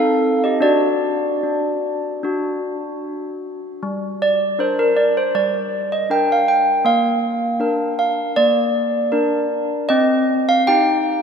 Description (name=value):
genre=classical, tune for handbells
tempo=78 BPM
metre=4/4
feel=uneven beats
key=G minor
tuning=A4 = 441 Hz
part: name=handbells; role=solo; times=0.0-11.2 s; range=G3 to G5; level=-16 LUFS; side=equal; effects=none
room=wet cathedral reverb, RT60 4.3 s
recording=minimal, uncompressed stereo recording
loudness=-16 LUFS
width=side -6 dB against mid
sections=0.0-3.8 A section; 3.8-11.2 B section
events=none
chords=0.0 Adim/C; 0.6 D; 3.8 Gm; 6.9 Bb; 9.9 Cm